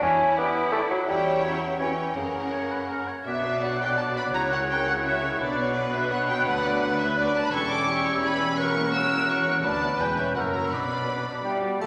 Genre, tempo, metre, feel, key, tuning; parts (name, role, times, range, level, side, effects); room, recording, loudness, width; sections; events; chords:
cinematic, playful, whimsical film cue; 169 BPM; 3/4; straight; B minor; A4 = 439 Hz
mellow clarinet; second line; 0.0-11.9 s; C#4 to C#5; -36 LUFS; equal
warm bassoon; accompaniment; 0.0-11.9 s; C#3 to C#4; -32 LUFS; equal
clear studio cello section; bass; 0.0-11.9 s; D2 to E4; -36 LUFS; equal
rich studio double bass section; bass; 0.0-11.9 s; E1 to F#2; -40 LUFS; equal
clear studio violin section; melody; 0.4-11.9 s; C#5 to E6; -33 LUFS; equal
bright small flute group; second line; 0.4-11.9 s; F5 to G6; -33 LUFS; equal
rich studio violin section; second line; 0.4-11.9 s; G4 to E5; -36 LUFS; equal
warm oboe; second line; 0.4-11.9 s; G4 to D5; -33 LUFS; equal
rich studio viola section; accompaniment; 0.4-11.9 s; A#3 to D5; -38 LUFS; equal
warm French horn section; sustained chords; 0.4-11.9 s; A#3 to A#4; -41 LUFS; equal
triangle; percussion; 11.8-11.9 s; -50 LUFS; equal
wet scoring stage reverb, RT60 1.7 s; -25 LUFS; mono
0.0-3.3 A section; 3.3-11.8 B section
0.0 Em7; 1.1 C#dim/E; 2.2 F#; 3.3 Bm; 4.3 F#7/C#; 5.4 Bm; 6.5 Bm/D; 7.5 C#dim/E; 8.6 F#7/E; 9.6 Bm/D; 10.0 C#m7b5/E; 10.3 F#7; 10.7 Bm